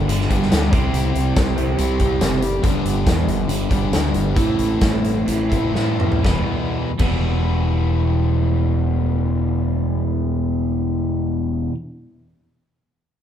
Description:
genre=classic rock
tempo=120-142 BPM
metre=4/4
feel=straight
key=E minor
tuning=A4 = 439 Hz
part: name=crunchy overdriven guitar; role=riff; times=0.0-11.7 s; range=E2 to A4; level=-24 LUFS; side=left 7 dB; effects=none
part: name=overdriven electric guitar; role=riff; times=0.0-11.7 s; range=E2 to C4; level=-23 LUFS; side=right 5 dB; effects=phaser
part: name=growling fingered electric bass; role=bass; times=0.0-11.7 s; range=E1 to A2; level=-22 LUFS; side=equal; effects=overdrive
part: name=big rock drum kit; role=drums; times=0.1-7.1 s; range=crash cymbal, hi-hat, kick drum, snare drum, toms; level=-21 LUFS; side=equal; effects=none
room=moderate large studio reverb, RT60 1.2 s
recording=band playing live in one room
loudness=-17 LUFS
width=side -9 dB against mid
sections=0.0-6.2 A section; 6.2-10.3 B section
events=slowing down 2.6-6.2; drum fill 5.8-6.2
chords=0.0 G; 0.7 C; 2.6 G; 4.4 Am; 6.2 Em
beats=0.09 0.51 | 0.93 1.35 1.78 2.20 | 2.63 3.05 3.48 3.92 | 4.36 4.81 5.28 5.75 | 6.25 6.75 7.25 7.75 | 8.25 8.75 9.25 9.75

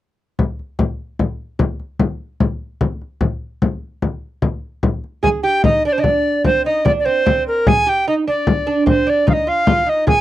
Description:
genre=medieval dance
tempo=99 BPM (dotted quarters)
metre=6/8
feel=straight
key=C minor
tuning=A4 = 439 Hz
part: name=frame drum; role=percussion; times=0.4-10.2 s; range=none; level=-17 LUFS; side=left 2 dB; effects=none
part: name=bright reedy tenor recorder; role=melody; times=5.2-10.2 s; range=Bb4 to Ab5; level=-16 LUFS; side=right 1 dB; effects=none
part: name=lute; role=second line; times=5.2-10.2 s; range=C4 to Ab4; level=-20 LUFS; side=right 5 dB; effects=none
room=light reverb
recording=dry, close 1970s-style studio recording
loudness=-16 LUFS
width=side -14 dB against mid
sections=0.4-5.2 A section; 5.2-10.2 B section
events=none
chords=none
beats=| 0.39 1.00 | 1.60 2.21 | 2.81 3.42 | 4.03 4.63 | 5.24 5.84 | 6.45 7.06 | 7.66 8.27 | 8.87 9.48 | 10.08

